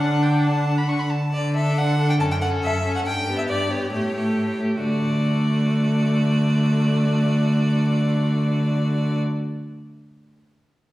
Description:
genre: quick classical-period movement for string quartet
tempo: 134 BPM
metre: 4/4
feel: rubato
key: D major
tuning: A4 = 441 Hz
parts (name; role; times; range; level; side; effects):
- clear violin; melody; 0.0-9.2 s; C#5 to A5; -29 LUFS; equal; none
- rich violin; second line; 0.0-9.2 s; F#4 to C#6; -30 LUFS; left 2 dB; none
- rich viola; accompaniment; 0.0-9.2 s; A3 to D4; -23 LUFS; equal; none
- clear cello; bass; 0.0-9.2 s; F#2 to D3; -22 LUFS; equal; none
room: wet recital hall reverb, RT60 1.4 s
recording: recorded in a church or concert hall, small room ambience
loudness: -19 LUFS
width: side -16 dB against mid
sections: 0.0-1.3 A section; 1.3-4.8 B section; 4.8-8.4 C section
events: slowing down 0.4-4.8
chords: 0.0 D; 2.2 F#m; 3.1 G; 3.9 A7; 4.8 D

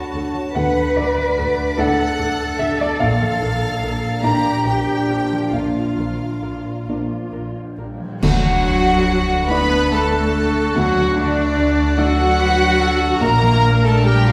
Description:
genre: cinematic, emotional film score for orchestra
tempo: 44-50 BPM (dotted quarters)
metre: 6/8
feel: rubato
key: unclear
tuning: A4 = 440 Hz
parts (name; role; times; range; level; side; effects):
- dark studio violin section; melody; 0.0-14.3 s; F#4 to B5; -29 LUFS; equal; none
- clear studio violin section; second line; 0.0-14.3 s; D4 to Bb5; -27 LUFS; equal; none
- dark baby grand piano; accompaniment; 0.0-14.3 s; Bb1 to B5; -26 LUFS; equal; none
- mellow French horn section; sustained chords; 0.0-14.3 s; F3 to D4; -29 LUFS; equal; none
- concert harp; arpeggios; 0.0-14.3 s; Bb2 to D6; -29 LUFS; equal; none
- dark chamber cello section; bass; 0.0-14.3 s; D3 to B4; -26 LUFS; equal; none
- dark symphonic viola section; accompaniment; 0.1-14.3 s; Bb3 to B4; -27 LUFS; equal; none
- dark symphonic double bass section; bass; 0.1-14.3 s; Bb1 to D2; -26 LUFS; equal; none
- cymbal swell, clash cymbals and concert bass drum; percussion; 5.5-9.9 s; none; -29 LUFS; equal; none
- bright small flute group; second line; 8.2-14.3 s; D5 to B5; -27 LUFS; equal; none
- timpani; percussion; 8.2-9.5 s; D3; -29 LUFS; equal; none
- clear oboe; second line; 9.5-14.3 s; F#4 to B4; -27 LUFS; equal; none
room: wet recital hall reverb, RT60 1.4 s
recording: recorded in a church or concert hall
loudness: -18 LUFS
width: mono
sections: 0.0-8.2 A section; 8.2-14.3 B section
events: band accent 8.2-9.1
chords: 0.0 D; 3.0 Bb; 8.2 D; 13.2 Bb

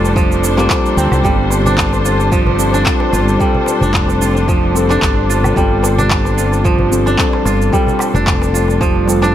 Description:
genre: organic downtempo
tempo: 111 BPM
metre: 4/4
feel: swing 55% on 16ths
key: unclear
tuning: A4 = 442 Hz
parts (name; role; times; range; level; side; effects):
- muted felt-like synth keys; accompaniment; 0.0-9.3 s; G3 to A4; -18 LUFS; left 4 dB; chorus, sidechain pumping, digital delay
- muted studio string section; sustained chords; 0.0-9.3 s; G3 to C5; -21 LUFS; left 1 dB; sidechain pumping
- kora; arpeggios; 0.0-9.3 s; F3 to F4; -18 LUFS; right 3 dB; digital delay
- mellow fretless electric bass; bass; 0.0-9.3 s; F1 to D2; -16 LUFS; equal; sidechain pumping
- darbuka; percussion; 0.0-9.3 s; none; -26 LUFS; left 1 dB; none
- electronic cabasa, handclaps and woodblock; drums; 0.1-9.3 s; none; -21 LUFS; right 1 dB; overdrive, small room ambience
- electronic kick drum; drums; 0.2-8.9 s; none; -17 LUFS; equal; overdrive, small room ambience
room: light reverb, small room ambience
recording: none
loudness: -11 LUFS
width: side -11 dB against mid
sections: 0.0-9.3 A section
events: none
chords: 0.0 Gm7

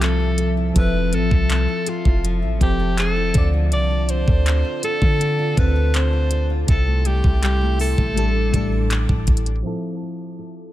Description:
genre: contemporary R&B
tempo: 81 BPM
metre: 4/4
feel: straight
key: D minor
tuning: A4 = 440 Hz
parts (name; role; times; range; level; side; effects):
- breathy alto saxophone; melody; 0.0-9.2 s; F4 to D5; -25 LUFS; equal; dub echo
- FM electric piano; accompaniment; 0.0-10.7 s; A2 to E5; -27 LUFS; equal; chorus, phaser, dub echo
- glassy FM pad; sustained chords; 0.0-9.6 s; F3 to D6; -30 LUFS; left 2 dB; ensemble chorus, built-in reverb
- nylon-string guitar; arpeggios; 0.0-10.7 s; A2 to A4; -30 LUFS; left 5 dB; none
- clean 808-style bass; bass; 0.0-9.6 s; F1 to D3; -20 LUFS; equal; none
- trap drum kit; drums; 0.0-9.6 s; handclaps, hi-hat, kick drum; -20 LUFS; equal; none
room: little or no reverb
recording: echo-heavy mix, low-pass filter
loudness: -17 LUFS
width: side -14 dB against mid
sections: 0.0-9.6 A section; 9.6-10.7 B section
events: filter sweep 9.6-10.7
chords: 0.0 Fmaj7; 3.4 Dm7; 6.7 C6; 8.2 A7sus4; 9.6 Fmaj7

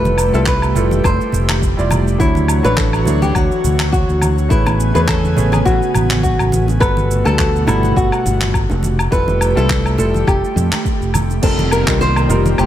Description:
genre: sunset chillout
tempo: 104 BPM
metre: 4/4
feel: swing 55% on 16ths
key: unclear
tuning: A4 = 440 Hz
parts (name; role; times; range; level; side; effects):
- flamenco guitar; melody; 0.0-12.7 s; E4 to C5; -19 LUFS; equal; ping-pong delay
- clear grand piano; accompaniment; 0.0-12.7 s; F#3 to D5; -23 LUFS; left 1 dB; auto-pan, tape echo
- airy breathy pad; sustained chords; 0.0-12.7 s; B2 to G#5; -23 LUFS; right 1 dB; chorus
- fingered electric bass; bass; 0.0-12.7 s; F1 to F2; -17 LUFS; equal; none
- bongos and congas; percussion; 0.0-12.6 s; none; -24 LUFS; right 1 dB; none
- deep house drum kit; drums; 0.1-12.7 s; crash cymbal, handclaps, shaker, woodblock; -22 LUFS; left 1 dB; overdrive
- electronic kick drum; drums; 0.5-12.0 s; none; -19 LUFS; equal; overdrive
- soft round pluck; arpeggios; 11.4-12.7 s; C4 to F4; -26 LUFS; right 1 dB; analog chorus, tape echo
- downlifter; sound effects; 11.4-12.7 s; none; -26 LUFS; right 1 dB; none
room: light reverb, digital ambience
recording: none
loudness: -13 LUFS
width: side -12 dB against mid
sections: 0.0-11.4 A section; 11.4-12.7 B section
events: none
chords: 0.0 Fmaj9; 2.2 Dmaj9; 4.5 Amaj9; 6.8 Gmaj9; 8.8 Fmaj9; 11.4 F9sus4

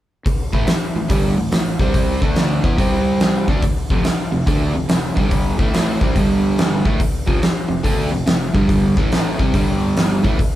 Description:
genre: blues rock power trio and southern rock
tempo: 142 BPM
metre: 4/4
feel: swing 66% on 8ths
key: A minor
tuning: A4 = 440 Hz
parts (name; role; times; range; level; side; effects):
- crunchy overdriven guitar; riff; 0.3-10.4 s; F2 to E4; -19 LUFS; right 1 dB; none
- fuzz fingered electric bass; bass; 0.3-10.4 s; F1 to E2; -25 LUFS; equal; overdrive
- huge arena drum kit; drums; 0.3-10.5 s; hi-hat, kick drum, snare drum; -18 LUFS; equal; none
room: light reverb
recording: band playing live in one room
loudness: -15 LUFS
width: side -13 dB against mid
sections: 0.3-10.6 A section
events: none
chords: 0.3 A5; 1.7 C5; 2.2 D5; 2.6 E5; 2.8 C5; 3.4 D5; 3.6 F5; 5.1 G5; 5.5 A5; 5.9 C5; 6.2 G5; 6.8 F5; 8.5 G5; 8.9 A5; 9.3 C5; 9.5 G5; 10.2 A5

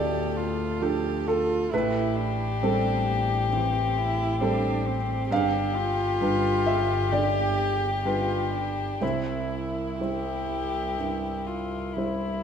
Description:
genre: neoclassical piano and strings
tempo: 60-68 BPM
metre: 4/4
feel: rubato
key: A minor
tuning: A4 = 444 Hz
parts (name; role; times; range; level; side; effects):
- dark violin; melody; 0.0-12.4 s; E4 to A4; -29 LUFS; left 7 dB; none
- warm cello; second line; 0.0-12.4 s; C4 to G4; -31 LUFS; right 3 dB; none
- felt-muted upright piano; accompaniment; 0.0-12.4 s; C2 to F5; -28 LUFS; right 3 dB; none
- rich double bass; bass; 0.0-12.4 s; G1 to D2; -30 LUFS; equal; none
room: moderate scoring stage reverb, RT60 1.6 s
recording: minimal, uncompressed stereo recording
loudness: -24 LUFS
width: side -7 dB against mid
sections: 0.0-12.4 A section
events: none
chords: 0.0 Dm; 1.7 Am7; 5.3 G7; 9.0 C

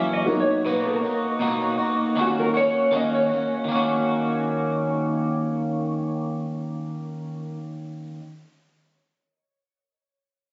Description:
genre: indie pop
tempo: 79 BPM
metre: 4/4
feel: straight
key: Eb minor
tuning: A4 = 440 Hz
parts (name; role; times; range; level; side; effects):
- clean lap steel guitar; melody; 0.0-3.5 s; Gb4 to Fb5; -28 LUFS; equal; lush chorus, plate reverb, tape echo
- dark upright piano; accompaniment; 0.0-0.7 s; Gb3 to Bb4; -27 LUFS; equal; plate reverb
- electric guitar at the edge of break-up; accompaniment; 0.0-8.2 s; Gb2 to F#4; -26 LUFS; equal; lush chorus, vibrato effect
room: moderate studio reverb, RT60 0.6 s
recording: recorded on a phone in the room, club reverb, nothing above 7.8 kHz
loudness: -24 LUFS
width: mono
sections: 0.0-3.7 A section; 3.7-6.7 B section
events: electric slide guitar solo 0.0-3.7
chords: 0.3 Bmaj7; 2.2 Ebm7

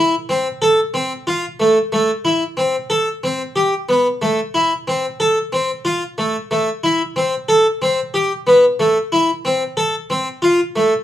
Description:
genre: contemporary instrumental, chamber music in an uneven meter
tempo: 184 BPM (eighths)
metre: 7/8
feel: straight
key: unclear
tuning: A4 = 439 Hz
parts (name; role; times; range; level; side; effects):
- harpsichord; solo; 0.0-10.9 s; A3 to A4; -15 LUFS; equal; none
room: moderate studio ambience, RT60 0.5 s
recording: heard from further back in the room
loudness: -15 LUFS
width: side -12 dB against mid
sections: 0.0-11.0 A section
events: none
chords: none

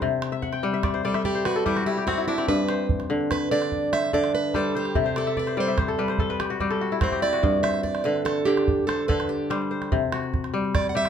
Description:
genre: west african traditional, West African string and xylophone music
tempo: 97 BPM (dotted quarters)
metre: 12/8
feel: straight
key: unclear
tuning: A4 = 440 Hz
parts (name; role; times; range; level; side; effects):
- kora; arpeggios; 0.0-11.1 s; G2 to G5; -24 LUFS; left 3 dB; none
- calabash; percussion; 0.0-11.1 s; none; -29 LUFS; right 2 dB; none
- picked plugged-in old ladder-braced acoustic guitar; melody; 1.0-11.1 s; E4 to F#5; -26 LUFS; right 4 dB; none
room: wet small room reverb, RT60 0.6 s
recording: none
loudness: -22 LUFS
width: side -8 dB against mid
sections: 0.0-11.1 A section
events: steel-string acoustic guitar solo 0.0-11.1; kora fill 0.3-2.5, 5.0-7.4; drum fill 7.1-7.4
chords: 0.0 C5; 2.5 G; 5.0 C5; 7.4 G5; 9.9 C5

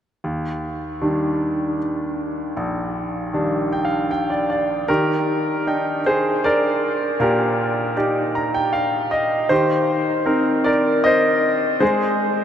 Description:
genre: folk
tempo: 78 BPM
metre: 3/4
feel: straight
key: Eb major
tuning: A4 = 440 Hz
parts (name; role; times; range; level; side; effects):
- bright grand piano; melody; 0.2-12.4 s; Bb1 to Bb5; -18 LUFS; equal; none
room: wet huge ambient reverb, RT60 7.0 s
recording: in a vast, echoing space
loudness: -18 LUFS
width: side -9 dB against mid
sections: 0.3-4.9 A section; 4.9-12.4 B section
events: grand piano fill 3.3-4.9, 8.0-9.5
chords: 0.3 Ebmaj7; 9.5 Cm7/Eb; 11.8 Ab

